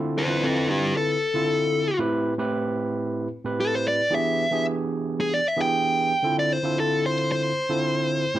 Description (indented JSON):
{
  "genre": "blues",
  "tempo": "113 BPM",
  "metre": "4/4",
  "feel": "straight",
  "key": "unclear",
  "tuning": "A4 = 440 Hz",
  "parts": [
    { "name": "overdriven tine electric piano", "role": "accompaniment", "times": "0.0-8.4 s", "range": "A2 to C5", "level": "-25 LUFS", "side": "right 1 dB", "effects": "none" },
    { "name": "dark smooth lead guitar", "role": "melody", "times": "0.2-8.4 s", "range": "C4 to G5", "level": "-23 LUFS", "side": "left 1 dB", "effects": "overdrive" }
  ],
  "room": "moderate club reverb, RT60 0.5 s",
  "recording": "none",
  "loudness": "-22 LUFS",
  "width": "side -13 dB against mid",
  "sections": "0.0-8.4 A section",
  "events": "lead electric guitar solo 0.0-8.4",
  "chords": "0.0 Dm7; 2.0 Am7; 4.1 E7#9; 6.2 Dm7"
}